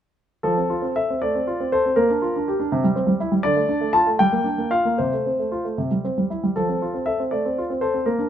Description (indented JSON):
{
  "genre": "classical-period piano sonatina",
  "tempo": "75-82 BPM (dotted quarters)",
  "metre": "6/8",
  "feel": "rubato",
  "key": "F major",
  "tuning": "A4 = 440 Hz",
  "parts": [
    { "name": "warm grand piano", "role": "solo", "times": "0.4-8.3 s", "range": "C3 to A5", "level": "-19 LUFS", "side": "equal", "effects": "none" }
  ],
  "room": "moderate recital hall reverb, RT60 1.4 s",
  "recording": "close, detailed microphones",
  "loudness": "-19 LUFS",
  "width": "side -9 dB against mid",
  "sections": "0.4-8.3 A section",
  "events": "none",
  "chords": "0.4 F; 1.2 F/A; 2.0 Gm7/Bb; 2.7 C; 3.4 Dm; 4.2 Gm7; 5.0 F/C; 5.8 C; 6.6 F; 7.3 F/A"
}